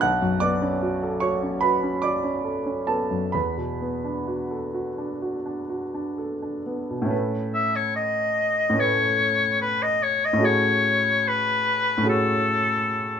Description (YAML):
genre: classical, impressionist duo for oboe and grand piano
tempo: 62-76 BPM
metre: 4/4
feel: rubato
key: A major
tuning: A4 = 440 Hz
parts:
  - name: warm grand piano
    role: accompaniment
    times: 0.0-13.2 s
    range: B1 to F#6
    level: -24 LUFS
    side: right 1 dB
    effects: none
  - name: clear oboe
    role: melody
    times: 7.5-13.2 s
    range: A4 to E5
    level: -21 LUFS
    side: left 3 dB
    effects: none
room: moderate large studio reverb, RT60 1.0 s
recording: minimal, uncompressed stereo recording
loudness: -21 LUFS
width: side -8 dB against mid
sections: 0.0-7.1 A section; 7.1-13.2 B section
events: none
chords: 0.0 Bm9; 3.3 E9sus4; 7.1 Aadd9; 10.4 F#madd9/A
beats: | 0.02 0.82 1.63 2.45 | 3.34 4.29 5.22 6.17 | 7.12 7.97 8.80 9.61 | 10.45 11.28 12.09 12.91